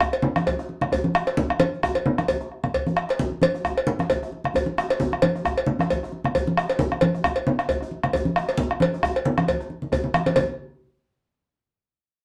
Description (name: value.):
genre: west african traditional, West African drum ensemble.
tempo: 134 BPM.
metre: 4/4.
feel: swing 55% on 16ths.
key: none.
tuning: none.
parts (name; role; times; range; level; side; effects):
bombo; percussion; 0.0-10.6 s; none; -28 LUFS; equal; none.
djembe; percussion; 0.0-10.6 s; none; -36 LUFS; equal; none.
cowbell; percussion; 0.1-10.6 s; none; -27 LUFS; equal; none.
congas; percussion; 0.2-10.6 s; none; -27 LUFS; equal; none.
room: wet small room reverb, RT60 0.6 s.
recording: none.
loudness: -24 LUFS.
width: mono.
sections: 0.0-10.4 A section; 10.4-12.1 B section.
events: speeding up 0.0-12.1; drum fill 2.7-3.2, 9.8-10.4.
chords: none.